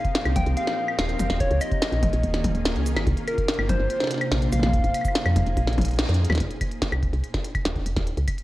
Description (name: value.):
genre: IDM.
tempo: 144 BPM.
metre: 4/4.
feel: straight.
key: unclear.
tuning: A4 = 439 Hz.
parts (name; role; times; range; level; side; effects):
soft struck synth lead; melody; 0.0-5.9 s; Bb4 to G5; -28 LUFS; left 1 dB; chorus, tremolo, cassette tape, tape echo.
glassy FM pad; sustained chords; 0.0-6.4 s; Bb2 to C5; -31 LUFS; equal; ensemble chorus, built-in reverb, sidechain pumping.
electronic kick drum; drums; 0.0-8.4 s; none; -27 LUFS; equal; none.
glitchy drum kit; drums; 0.0-8.4 s; claves, hi-hat, shaker, snare drum, toms; -27 LUFS; equal; none.
woody FM bass; bass; 0.3-8.3 s; Eb1 to F2; -24 LUFS; equal; none.
room: moderate echo chamber reverb, RT60 1.5 s, digital ambience.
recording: worn, warbling old tape, cassette tape, warbly pitch drift.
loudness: -21 LUFS.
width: side -17 dB against mid.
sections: 0.0-6.4 A section; 6.4-8.4 B section.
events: band accent 6.0; drum fill 6.2.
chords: 0.0 F9sus4; 1.4 Eb9sus4; 2.9 C9sus4; 4.5 Bb9sus4; 6.4 F5.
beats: 0.15 0.57 0.98 | 1.40 1.82 2.23 2.65 | 3.07 3.48 3.90 4.32 | 4.74 5.15 5.57 5.99 | 6.40 6.82 7.24 7.65 | 8.07.